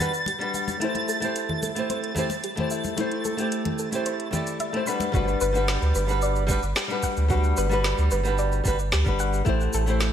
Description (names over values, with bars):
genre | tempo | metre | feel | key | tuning
sunset chillout | 111 BPM | 4/4 | straight | G major | A4 = 440 Hz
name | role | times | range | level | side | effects
flamenco guitar | accompaniment | 0.0-10.1 s | G3 to D5 | -27 LUFS | moving between left 4 dB and right 4 dB | auto-pan, digital delay
smooth R&B drum kit | drums | 0.0-10.1 s | hi-hat, shaker, snare drum | -31 LUFS | equal | studio reverb
congas | percussion | 0.0-5.1 s | none | -33 LUFS | left 2 dB | none
twinkling granular texture | texture | 0.0-5.2 s | A6 | -33 LUFS | right 1 dB | built-in reverb
soft round pluck | arpeggios | 0.3-10.0 s | E4 to B5 | -32 LUFS | left 2 dB | wide subtle chorus, digital delay
warm sub bass | bass | 5.1-10.1 s | G1 to D2 | -24 LUFS | equal | none
electronic kick drum | drums | 5.1-9.6 s | none | -26 LUFS | equal | studio reverb
room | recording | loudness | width
moderate plate reverb, RT60 1.9 s, digital ambience | bright 1980s-style digital production | -22 LUFS | side -9 dB against mid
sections
0.0-5.1 A section; 5.1-10.1 B section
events
filter sweep on synth pluck 0.0-5.1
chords
0.0 Gmaj7; 0.8 Am7; 4.9 Gmaj7; 9.5 Am7